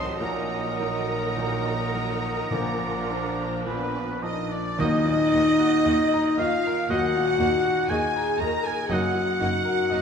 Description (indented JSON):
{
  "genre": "classical, romantic movement for piano and orchestra",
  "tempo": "51-61 BPM",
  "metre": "4/4",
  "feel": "rubato",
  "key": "Eb minor",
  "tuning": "A4 = 440 Hz",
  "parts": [
    { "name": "bright grand piano", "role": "melody", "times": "0.0-10.0 s", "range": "A1 to Bb5", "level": "-30 LUFS", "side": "equal", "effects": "none" },
    { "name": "rich studio violin section", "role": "melody", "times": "0.0-10.0 s", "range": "Cb5 to C6", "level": "-36 LUFS", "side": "left 2 dB", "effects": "none" },
    { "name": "rich studio violin section", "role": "second line", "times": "0.0-10.0 s", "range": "F4 to Bb5", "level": "-34 LUFS", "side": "right 2 dB", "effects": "none" },
    { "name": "silver concert flute", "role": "second line", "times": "0.0-10.0 s", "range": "Cb5 to Bb5", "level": "-33 LUFS", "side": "equal", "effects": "none" },
    { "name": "warm oboe", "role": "second line", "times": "0.0-10.0 s", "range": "Cb5 to Bb5", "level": "-31 LUFS", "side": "right 2 dB", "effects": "none" },
    { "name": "mellow bassoon", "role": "accompaniment", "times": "0.0-4.4 s", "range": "F3 to F#3", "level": "-37 LUFS", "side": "right 2 dB", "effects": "none" },
    { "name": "rich studio viola section", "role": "accompaniment", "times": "0.0-10.0 s", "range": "Eb3 to Gb4", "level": "-36 LUFS", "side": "right 3 dB", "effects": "none" },
    { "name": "dark French horn section", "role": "sustained chords", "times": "0.0-10.0 s", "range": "Bb3 to Bb4", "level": "-26 LUFS", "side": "left 3 dB", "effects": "none" },
    { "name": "clear studio double bass section", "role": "bass", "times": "0.0-10.0 s", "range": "Gb1 to Eb2", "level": "-36 LUFS", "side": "right 4 dB", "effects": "none" },
    { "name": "rich studio cello section", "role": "bass", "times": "0.0-10.0 s", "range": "Eb2 to Bb4", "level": "-34 LUFS", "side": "right 2 dB", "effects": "none" },
    { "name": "timpani", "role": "percussion", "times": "2.5-6.3 s", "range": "Bb2 to Eb3", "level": "-34 LUFS", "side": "right 2 dB", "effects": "none" },
    { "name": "clear trombone section", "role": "sustained chords", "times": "4.8-9.3 s", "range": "Gb3 to Bb3", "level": "-34 LUFS", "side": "equal", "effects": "none" },
    { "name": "clear trumpet", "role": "stabs", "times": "4.8-9.3 s", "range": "Eb5", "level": "-35 LUFS", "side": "right 2 dB", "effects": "none" }
  ],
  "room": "wet scoring stage reverb, RT60 1.9 s",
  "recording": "minimal, uncompressed stereo recording",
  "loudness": "-22 LUFS",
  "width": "side -6 dB against mid",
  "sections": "0.0-4.8 A section; 4.8-10.0 B section",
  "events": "none",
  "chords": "0.2 Ebm/Bb; 2.5 Bb; 4.8 Ebm; 8.9 Ebm/Gb"
}